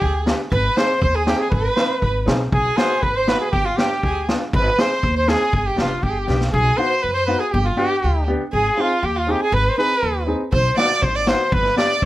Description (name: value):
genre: klezmer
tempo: 120 BPM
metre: 2/4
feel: straight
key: unclear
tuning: A4 = 442 Hz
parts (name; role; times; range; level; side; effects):
- warm cornet; melody; 0.0-12.1 s; F4 to D5; -20 LUFS; equal; none
- warm violin; second line; 0.0-12.1 s; F4 to D5; -24 LUFS; right 3 dB; none
- upright bass; bass; 0.0-12.1 s; F1 to F#2; -22 LUFS; equal; none
- street-band drum kit; drums; 0.0-6.5, 10.5-12.1 s; kick drum, snare drum; -22 LUFS; equal; none
- warm upright piano; accompaniment; 0.3-11.9 s; B3 to B4; -24 LUFS; left 1 dB; none
room: moderate studio reverb, RT60 0.5 s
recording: none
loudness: -16 LUFS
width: side -16 dB against mid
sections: 0.0-6.5 A section; 6.5-12.1 A section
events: drum fill 6.3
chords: 0.0 G; 0.5 Ab; 2.5 B; 3.5 G; 4.5 Ab; 5.5 G; 6.5 B; 7.5 G; 8.5 Ab; 10.5 B; 11.5 G